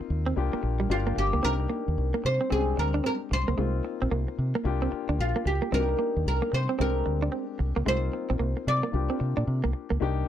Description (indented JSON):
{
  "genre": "R&B",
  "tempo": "112 BPM",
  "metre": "4/4",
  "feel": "swing 64% on 16ths",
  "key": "C minor",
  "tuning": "A4 = 438 Hz",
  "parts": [
    { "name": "oud", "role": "melody", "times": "0.0-9.7 s", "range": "F4 to D5", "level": "-30 LUFS", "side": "equal", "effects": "slapback echo" },
    { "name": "warm concert grand piano", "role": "accompaniment", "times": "0.0-10.3 s", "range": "Ab3 to G4", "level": "-34 LUFS", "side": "left 11 dB", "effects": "none" },
    { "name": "direct-recorded clean electric guitar", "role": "riff", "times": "0.0-10.0 s", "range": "G3 to D4", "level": "-30 LUFS", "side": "right 5 dB", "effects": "wide subtle chorus" },
    { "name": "deep dub fingered electric bass", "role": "bass", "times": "0.0-10.2 s", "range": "G1 to C3", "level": "-27 LUFS", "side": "equal", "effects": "none" }
  ],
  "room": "little or no reverb",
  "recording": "dry, close 1970s-style studio recording",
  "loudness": "-25 LUFS",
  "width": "side -10 dB against mid",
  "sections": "0.0-1.4 A section; 1.4-10.0 B section",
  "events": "none",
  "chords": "0.4 Bb69; 0.9 Gm7; 1.4 Cm9; 2.5 Bb13/C; 3.6 Ab69 (rootless); 4.7 Bb69; 5.7 Cm9; 6.8 Bb13/C; 7.9 Ab69 (rootless); 8.9 C9sus4"
}